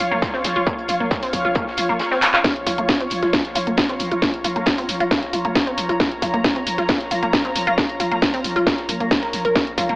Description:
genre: driving peak-time techno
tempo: 135 BPM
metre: 4/4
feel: straight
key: Bb minor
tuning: A4 = 440 Hz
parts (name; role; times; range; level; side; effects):
- resonant blip pluck; riff; 0.0-9.9 s; Bb3 to Bb4; -23 LUFS; equal; phaser, overdrive, sidechain pumping, tape echo
- growling 808-style bass; bass; 0.0-10.0 s; Bb1; -31 LUFS; equal; overdrive, sidechain pumping, low-pass filter
- techno drum kit; drums; 0.0-10.0 s; handclaps, hi-hat, snare drum; -20 LUFS; equal; overdrive
- granular cloud pad; texture; 0.0-10.0 s; F4 to Bb5; -25 LUFS; equal; built-in reverb, sidechain pumping
- deep reggae drum kit; drums; 0.2-9.9 s; hi-hat, snare drum; -32 LUFS; equal; none
- electronic kick drum; drums; 0.2-9.9 s; none; -25 LUFS; equal; distortion, overdrive
room: light reverb, studio reverb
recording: dry, gritty hardware recording, AM radio sound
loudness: -17 LUFS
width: side -24 dB against mid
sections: 0.0-10.0 A section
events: drum fill 2.2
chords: 0.0 Bbm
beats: 0.22 | 0.67 1.11 1.56 2.00 | 2.44 2.89 3.33 3.78 | 4.22 4.67 5.11 5.56 | 6.00 6.44 6.89 7.33 | 7.78 8.22 8.67 9.11 | 9.56

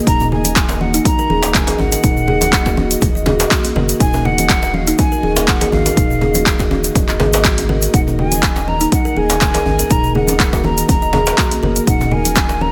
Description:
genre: afro house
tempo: 122 BPM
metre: 4/4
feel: swing 54% on 16ths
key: Eb minor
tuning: A4 = 440 Hz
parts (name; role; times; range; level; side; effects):
- ethereal airy pad; sustained chords; 0.0-12.7 s; Eb3 to Eb5; -27 LUFS; equal; ensemble chorus, built-in reverb, sidechain pumping
- breathy mellow jazz flute; melody; 0.1-12.7 s; F5 to Bb5; -24 LUFS; equal; delay
- kalimba; arpeggios; 0.1-11.9 s; Eb4 to Eb5; -22 LUFS; equal; sidechain pumping, delay
- round analog bass; bass; 0.1-12.7 s; Eb1 to Ab1; -25 LUFS; equal; sidechain pumping
- afro-pop drum kit; drums; 0.1-12.5 s; handclaps, hi-hat, toms; -22 LUFS; equal; overdrive
- electronic kick drum; drums; 0.1-12.5 s; none; -19 LUFS; equal; overdrive
- congas; percussion; 0.1-12.7 s; none; -25 LUFS; equal; none
- egg shaker; percussion; 0.1-12.6 s; none; -28 LUFS; equal; none
- djembe; percussion; 0.2-12.6 s; none; -26 LUFS; equal; none
room: light reverb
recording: none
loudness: -15 LUFS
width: mono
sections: 0.0-12.7 A section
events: none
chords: 0.0 Ebm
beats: | 0.07 0.56 1.05 1.54 | 2.04 2.53 3.02 3.51 | 4.00 4.50 4.99 5.48 | 5.97 6.46 6.95 7.45 | 7.94 8.43 8.92 9.41 | 9.90 10.40 10.89 11.38 | 11.87 12.36

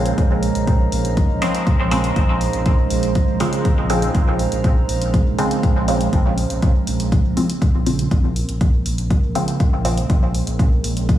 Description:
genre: dub techno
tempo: 121 BPM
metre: 4/4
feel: straight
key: Bb minor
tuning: A4 = 440 Hz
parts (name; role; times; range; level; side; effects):
- deep dark ambient pad; sustained chords; 0.0-11.2 s; Ab3 to Eb5; -24 LUFS; right 3 dB; chorus, built-in reverb, sidechain pumping
- filtered dub chord stab; stabs; 0.0-10.0 s; Db3 to C4; -23 LUFS; equal; phaser, sidechain pumping, dub echo
- warm sub bass; bass; 0.0-11.2 s; Bb1; -22 LUFS; equal; sidechain pumping
- drifting glass-harmonics texture; texture; 0.0-6.7 s; Bb3 to Eb4; -30 LUFS; left 1 dB; chorus, built-in reverb, sidechain pumping
- electronic hi-hat; drums; 0.1-11.2 s; none; -32 LUFS; left 1 dB; small room ambience
- electronic kick drum; drums; 0.2-11.2 s; none; -18 LUFS; equal; small room ambience
room: moderate lush hall reverb, RT60 2.5 s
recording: dreamy mix soaked in reverb, studio reverb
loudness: -16 LUFS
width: side -12 dB against mid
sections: 0.0-6.6 A section; 6.6-11.2 A section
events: none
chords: 0.0 Bbm7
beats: 0.18 | 0.68 1.17 1.67 2.16 | 2.66 3.15 3.65 4.15 | 4.64 5.14 5.63 6.13 | 6.62 7.12 7.62 8.11 | 8.61 9.11 9.60 10.10 | 10.59 11.09

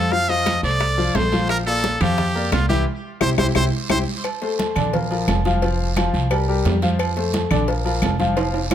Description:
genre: latin, salsa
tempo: 174 BPM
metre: 4/4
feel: straight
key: unclear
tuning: A4 = 440 Hz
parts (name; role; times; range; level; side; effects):
- brilliant trumpet; melody; 0.0-4.0 s; F4 to F5; -23 LUFS; right 1 dB; tape echo
- warm grand piano; accompaniment; 0.0-8.7 s; D3 to F5; -23 LUFS; left 4 dB; none
- upright bass; bass; 0.0-8.7 s; F1 to F2; -22 LUFS; right 1 dB; none
- bongos and cowbell; percussion; 0.1-8.7 s; none; -29 LUFS; left 5 dB; none
- congas; percussion; 0.1-8.7 s; none; -26 LUFS; right 2 dB; none
- guiro; percussion; 0.1-8.7 s; none; -34 LUFS; right 6 dB; none
- timbales and agogo bells; percussion; 0.3-8.7 s; none; -28 LUFS; right 8 dB; none
- claves; percussion; 0.5-8.7 s; none; -32 LUFS; left 10 dB; none
room: light reverb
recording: close, detailed microphones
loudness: -18 LUFS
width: side -10 dB against mid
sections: 0.0-4.2 A section; 4.2-8.7 B section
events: band accent 2.9-4.2; drum fill 3.6-4.2, 8.4-8.7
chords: 0.1 F7; 1.5 Bb; 2.9 C; 4.2 Bbmaj9; 4.9 Bb5; 5.6 F5; 6.3 C5; 7.0 F; 7.7 Bb5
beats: | 0.12 0.46 0.81 1.15 | 1.49 1.84 2.18 2.52 | 2.87 3.21 3.56 3.90 | 4.24 4.59 4.93 5.28 | 5.62 5.96 6.31 6.65 | 6.99 7.34 7.68 8.03 | 8.37 8.71

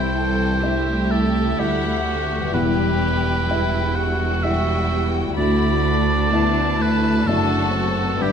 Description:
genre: cinematic, emotional film score for orchestra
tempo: 63 BPM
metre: 3/4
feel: rubato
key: unclear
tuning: A4 = 440 Hz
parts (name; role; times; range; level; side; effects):
- rich studio violin section; melody; 0.0-8.3 s; E5 to B5; -30 LUFS; left 6 dB; none
- clear oboe; second line; 0.0-8.3 s; G4 to F#5; -25 LUFS; right 2 dB; none
- rich studio violin section; second line; 0.0-8.3 s; D4 to A4; -29 LUFS; left 1 dB; none
- felt-muted upright piano; accompaniment; 0.0-8.3 s; C2 to E5; -26 LUFS; equal; none
- warm studio viola section; accompaniment; 0.0-8.3 s; E3 to F#5; -25 LUFS; right 1 dB; none
- concert harp; arpeggios; 0.0-8.3 s; G2 to E5; -29 LUFS; left 12 dB; none
- rich studio cello section; bass; 0.0-8.3 s; C2 to G2; -25 LUFS; equal; none
- rich studio double bass section; bass; 0.0-8.3 s; E1 to D2; -26 LUFS; right 3 dB; none
room: light reverb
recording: close, detailed microphones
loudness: -17 LUFS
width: side -7 dB against mid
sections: 0.0-8.3 A section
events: none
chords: 0.0 C; 2.5 Em; 5.4 Dsus2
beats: 0.62 1.58 | 2.53 3.48 4.43 | 5.37 6.32 7.26 | 8.20

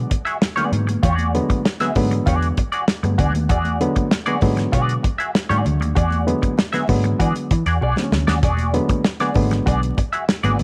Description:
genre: funk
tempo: 97 BPM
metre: 4/4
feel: straight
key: E mixolydian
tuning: A4 = 439 Hz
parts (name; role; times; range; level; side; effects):
- reed electric piano; stabs; 0.0-10.6 s; D3 to D4; -25 LUFS; equal; tube saturation
- vintage muted picked electric bass; bass; 0.0-10.6 s; E1 to E3; -23 LUFS; equal; none
- semi-hollow electric guitar; accompaniment; 0.1-10.6 s; F#4 to E5; -26 LUFS; equal; wah
- damped 70s drum kit; drums; 0.1-10.6 s; hi-hat, kick drum, snare drum; -23 LUFS; equal; none
- congas; percussion; 0.4-10.6 s; none; -32 LUFS; equal; none
room: small room ambience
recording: vinyl crackle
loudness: -19 LUFS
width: mono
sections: 0.0-10.6 A section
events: drum fill 7.8-8.4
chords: 0.0 E9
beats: 0.42 | 1.04 1.65 2.27 2.88 | 3.50 4.12 4.73 5.35 | 5.97 6.58 7.20 7.82 | 8.43 9.05 9.67 10.28

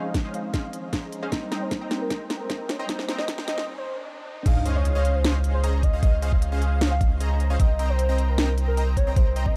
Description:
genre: future bass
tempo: 153 BPM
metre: 4/4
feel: half-time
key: unclear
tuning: A4 = 441 Hz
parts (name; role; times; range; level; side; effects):
- warm velvety synth lead; melody; 0.0-9.6 s; Bb4 to F5; -34 LUFS; equal; chorus, sidechain pumping
- glassy digital keys; accompaniment; 0.0-4.5 s; F3 to C5; -38 LUFS; equal; chorus, sidechain pumping
- supersaw stab; riff; 0.0-9.6 s; C4 to Bb5; -36 LUFS; equal; analog chorus, sidechain pumping, low-pass filter
- riser and sub drop; sound effects; 0.8-6.0 s; none; -40 LUFS; equal; none
- electronic kick drum; drums; 0.1-9.5 s; none; -24 LUFS; equal; none
- trap drum kit; drums; 0.1-9.4 s; crash cymbal, hi-hat, snare drum; -32 LUFS; equal; none
- airy dreamy lead; arpeggios; 4.5-9.6 s; F5 to Bb5; -42 LUFS; equal; chorus, sidechain pumping
- saturated sub bass; bass; 4.5-9.6 s; C2 to Db2; -25 LUFS; equal; sidechain pumping
room: digital ambience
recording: high-pass filter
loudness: -24 LUFS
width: mono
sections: 0.0-4.5 A section; 4.5-9.6 B section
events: build-up 0.0-4.5; drum fill 0.0-3.7; filter sweep on supersaw synth 0.0-4.5; filter sweep on soft synth lead 0.0-4.5; filter sweep 0.0-4.5; break 3.7-4.5; drop 4.5-9.6; impact 4.5-6.0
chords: 0.0 Dbmaj9; 1.3 Cm7; 4.5 Dbmaj9; 7.6 Cm7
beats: 0.14 0.54 0.93 | 1.32 1.71 2.10 2.50 | 2.89 3.28 3.67 4.07 | 4.46 4.85 5.24 5.63 | 6.03 6.42 6.81 7.20 | 7.60 7.99 8.38 8.77 | 9.16 9.56

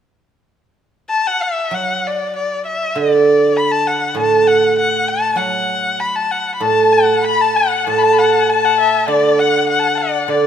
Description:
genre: chinese traditional, Chinese chamber ensemble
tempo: 97 BPM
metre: 2/4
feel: rubato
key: D gong mode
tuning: A4 = 439 Hz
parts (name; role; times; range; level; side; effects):
- clear erhu; melody; 1.1-10.5 s; D5 to B5; -17 LUFS; left 3 dB; none
- guzheng; accompaniment; 1.7-10.5 s; A2 to F#3; -16 LUFS; right 4 dB; none
- rich erhu; second line; 6.6-10.5 s; D5 to B5; -16 LUFS; left 8 dB; none
room: moderate scoring stage reverb, RT60 2.0 s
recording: none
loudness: -13 LUFS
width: side -8 dB against mid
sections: 0.5-1.7 A section; 1.7-10.5 B section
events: none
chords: none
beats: | 0.47 1.09 | 1.72 2.34 | 2.95 3.56 | 4.16 4.77 | 5.38 6.01 | 6.64 7.27 | 7.89 8.50 | 9.10 9.70 | 10.31

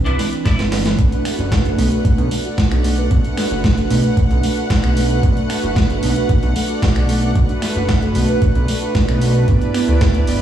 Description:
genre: nu-disco, nu disco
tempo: 113 BPM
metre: 4/4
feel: straight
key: B phrygian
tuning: A4 = 440 Hz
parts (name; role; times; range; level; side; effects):
- warm analog pad; accompaniment; 0.0-10.4 s; E3 to D5; -21 LUFS; right 1 dB; chorus, sidechain pumping, digital delay
- clean electric guitar; riff; 0.1-0.9 s; D4 to B4; -26 LUFS; left 1 dB; ensemble chorus, low-pass filter, digital delay
- fat analog bass; bass; 0.1-10.4 s; F#1 to D2; -18 LUFS; equal; none
- dusty soul sampler-style drum kit; drums; 0.1-10.4 s; finger snaps, hi-hat, snare drum; -24 LUFS; right 1 dB; overdrive, studio reverb
- electronic kick drum; drums; 0.5-10.1 s; none; -16 LUFS; equal; overdrive, studio reverb
- dark studio string section; sustained chords; 1.0-10.4 s; D5 to F#5; -30 LUFS; left 4 dB; sidechain pumping
- soft round pluck; arpeggios; 1.0-10.3 s; A3 to B4; -24 LUFS; right 5 dB; chorus, sidechain pumping, dub echo
room: little or no reverb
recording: played on a big sound system in a bare room, stone room reverb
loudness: -14 LUFS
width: side -10 dB against mid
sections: 0.0-10.4 A section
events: filter sweep on analog synth pad 0.0-10.4; drum fill 0.2-1.0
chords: 0.0 Cmaj9; 1.0 Bm7; 9.5 G6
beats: 0.46 | 0.99 1.52 2.05 2.58 | 3.11 3.64 4.17 4.70 | 5.23 5.76 6.30 6.83 | 7.36 7.89 8.42 8.95 | 9.48 10.01

